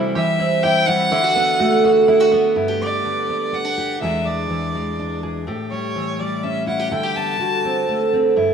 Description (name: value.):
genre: acoustic folk duo or small band.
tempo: 124 BPM.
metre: 3/4.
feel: straight.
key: G major.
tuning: A4 = 440 Hz.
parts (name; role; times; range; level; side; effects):
fingerpicked steel-string acoustic guitar; accompaniment; 0.0-8.5 s; E2 to G#4; -18 LUFS; right 1 dB; none.
open-back banjo; arpeggios; 0.0-2.6 s; D3 to G4; -25 LUFS; right 6 dB; none.
clear fiddle; melody; 0.2-8.1 s; C#5 to A5; -22 LUFS; right 1 dB; none.
room: wet plate reverb, RT60 2.4 s.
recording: rough home demo mix.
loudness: -17 LUFS.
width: side -7 dB against mid.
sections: 0.0-2.6 A section; 2.6-8.5 B section.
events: none.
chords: 0.0 C; 1.1 D6; 2.6 G; 4.0 E7; 5.5 A7; 6.9 G/D; 7.4 D7.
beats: 0.15 0.64 | 1.12 1.60 2.08 | 2.56 3.05 3.53 | 4.01 4.50 4.98 | 5.46 5.95 6.43 | 6.92 7.40 7.88 | 8.37.